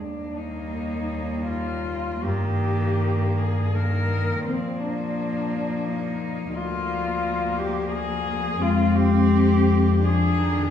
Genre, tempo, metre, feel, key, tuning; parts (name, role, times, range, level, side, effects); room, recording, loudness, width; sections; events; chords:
classical, lyrical piece for cello ensemble; 76-89 BPM; 3/4; rubato; Eb major; A4 = 440 Hz
dark cello; melody; 0.0-10.7 s; C4 to Bb4; -28 LUFS; left 3 dB
rich cello; second line; 0.0-10.7 s; Bb3 to D4; -30 LUFS; right 5 dB
rich cello; accompaniment; 0.0-10.7 s; Eb3 to Ab3; -27 LUFS; left 5 dB
warm cello; bass; 0.0-10.7 s; D2 to Bb2; -25 LUFS; left 1 dB
wet stone room reverb, RT60 1.4 s; heard from further back in the room, small room ambience; -21 LUFS; side -9 dB against mid
0.0-10.7 A section
0.0 Eb; 2.2 Eb/G; 4.4 Bb; 6.6 Bb/D; 8.6 Dm7b5/F